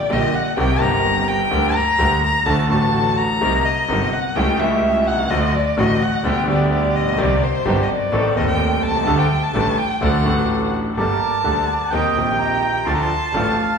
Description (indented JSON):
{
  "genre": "tango",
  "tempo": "127 BPM",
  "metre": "4/4",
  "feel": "rubato",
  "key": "G harmonic minor",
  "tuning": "A4 = 440 Hz",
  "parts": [
    { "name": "dark violin", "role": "second line", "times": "0.0-13.8 s", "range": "C5 to Bb5", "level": "-20 LUFS", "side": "left 1 dB", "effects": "none" },
    { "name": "clear concert grand piano", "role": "accompaniment", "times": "0.1-13.5 s", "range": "Eb1 to A4", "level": "-20 LUFS", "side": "left 1 dB", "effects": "none" },
    { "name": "dark studio string section", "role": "stabs", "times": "0.1-13.5 s", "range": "A3 to Bb4", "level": "-28 LUFS", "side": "right 4 dB", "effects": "none" },
    { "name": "clear double bass", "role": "bass", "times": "0.1-13.5 s", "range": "G1 to Eb2", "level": "-24 LUFS", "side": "right 1 dB", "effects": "none" },
    { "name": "bandoneon", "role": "melody", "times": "11.0-13.8 s", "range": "Bb4 to C6", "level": "-21 LUFS", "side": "right 4 dB", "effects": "none" }
  ],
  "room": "wet recital hall reverb, RT60 1.6 s",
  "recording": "recorded in a church or concert hall",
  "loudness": "-16 LUFS",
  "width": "side -6 dB against mid",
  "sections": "0.0-11.0 A section; 11.0-13.8 B section",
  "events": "violin solo 0.0-11.0",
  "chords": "0.0 Gm/Bb; 0.6 Cm7; 1.5 Gm/D; 2.5 D; 3.4 Cm7; 4.4 A7/C#; 5.3 D; 6.3 G/D; 7.2 Cm; 8.1 Adim; 9.1 Dsus4; 10.0 D; 11.0 Gmadd9; 11.9 Eb6; 12.9 Dm",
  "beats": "0.11 0.58 1.05 | 1.52 2.00 2.47 2.95 | 3.42 3.90 4.37 4.84 | 5.31 5.79 6.25 6.72 | 7.19 7.66 8.13 8.60 | 9.07 9.54 10.01 10.49 | 10.97 11.45 11.92 12.40 | 12.87 13.34"
}